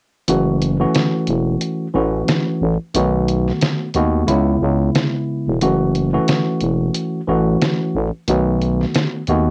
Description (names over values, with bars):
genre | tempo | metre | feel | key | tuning
hip hop, boom-bap hip-hop | 90 BPM | 4/4 | swing 56% on 16ths | F# dorian | A4 = 441 Hz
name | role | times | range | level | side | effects
tine electric piano | accompaniment | 0.3-9.5 s | C#3 to F#4 | -21 LUFS | equal | high-pass filter, low-pass filter, cassette tape
growling FM bass | bass | 0.3-9.5 s | E1 to D#2 | -20 LUFS | equal | none
trip hop sampler-style drum kit | drums | 0.3-9.5 s | hi-hat, snare drum | -22 LUFS | equal | none
room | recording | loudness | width
light reverb | home recording on cassette | -18 LUFS | mono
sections
0.3-9.5 A section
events
kick muted 0.3-9.5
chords
0.3 F#m7; 2.9 B7; 4.3 C#m7; 5.6 F#m7; 8.3 B7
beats
| 0.28 0.95 1.62 2.28 | 2.95 3.62 4.28 4.95 | 5.62 6.28 6.95 7.62 | 8.28 8.95